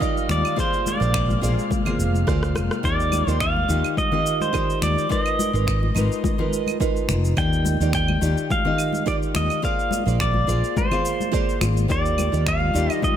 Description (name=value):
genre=sunset chillout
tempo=106 BPM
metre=4/4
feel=swing 54% on 16ths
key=Eb major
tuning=A4 = 440 Hz
part: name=pedal steel guitar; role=melody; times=0.0-13.2 s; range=C5 to G5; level=-25 LUFS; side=equal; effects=digital delay
part: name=nylon-string guitar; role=accompaniment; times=0.0-13.2 s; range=Eb3 to F5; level=-26 LUFS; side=moving between left 5 dB and right 7 dB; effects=auto-pan, tape echo
part: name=airy breathy pad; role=sustained chords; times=0.0-2.8, 12.3-13.2 s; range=C3 to F5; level=-32 LUFS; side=right 1 dB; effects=chorus
part: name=electronic kick drum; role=drums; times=0.0-13.2 s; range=none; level=-27 LUFS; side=equal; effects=none
part: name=electronic shaker, finger snaps, claves and rim click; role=drums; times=0.0-13.2 s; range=none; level=-31 LUFS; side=right 1 dB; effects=none
part: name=wind-like tuned noise texture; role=texture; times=0.0-2.9 s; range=F6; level=-39 LUFS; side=equal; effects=built-in reverb
part: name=fretless electric bass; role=bass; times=0.3-12.9 s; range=F1 to Eb2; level=-22 LUFS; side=equal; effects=none
part: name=congas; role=percussion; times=0.3-13.1 s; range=none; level=-31 LUFS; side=left 5 dB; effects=none
room=light reverb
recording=none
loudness=-19 LUFS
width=side -10 dB against mid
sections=0.0-2.8 A section; 2.8-13.2 B section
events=drum fill 2.3-2.8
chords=0.0 Ebmaj9; 0.6 Bb9; 2.8 Ebmaj9; 5.1 Abm6; 7.4 Ebmaj9; 9.6 Bb9; 11.9 Ebmaj9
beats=0.01 | 0.58 1.14 1.71 2.28 | 2.84 3.41 3.97 4.54 | 5.11 5.67 6.24 6.80 | 7.37 7.94 8.50 9.07 | 9.63 10.20 10.77 11.33 | 11.90 12.46 13.03